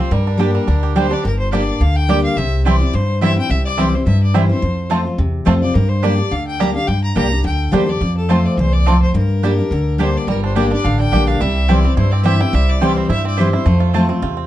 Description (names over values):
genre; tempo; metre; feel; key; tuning
bluegrass; 213 BPM; 4/4; swing 54% on 8ths; G dorian; A4 = 441 Hz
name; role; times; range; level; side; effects
bluegrass banjo; melody; 0.0-14.5 s; G3 to G4; -25 LUFS; right 7 dB; none
clear fiddle; melody; 0.0-13.9 s; A4 to Bb5; -24 LUFS; left 3 dB; none
picked steel-string acoustic guitar; accompaniment; 0.0-14.5 s; E2 to G4; -18 LUFS; left 1 dB; none
upright bass; bass; 0.1-14.5 s; G1 to G2; -17 LUFS; equal; none
mandolin; stabs; 0.4-14.0 s; Bb3 to A5; -23 LUFS; right 5 dB; none
room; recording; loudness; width
moderate studio reverb, RT60 0.6 s; dark, warm production; -13 LUFS; side -13 dB against mid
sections
0.0-1.2 A section; 1.2-10.3 B section; 10.3-14.5 B section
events
none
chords
0.1 Gm; 2.4 C; 4.6 F; 5.8 Gm; 8.0 F; 9.1 Gm; 11.4 C; 13.7 F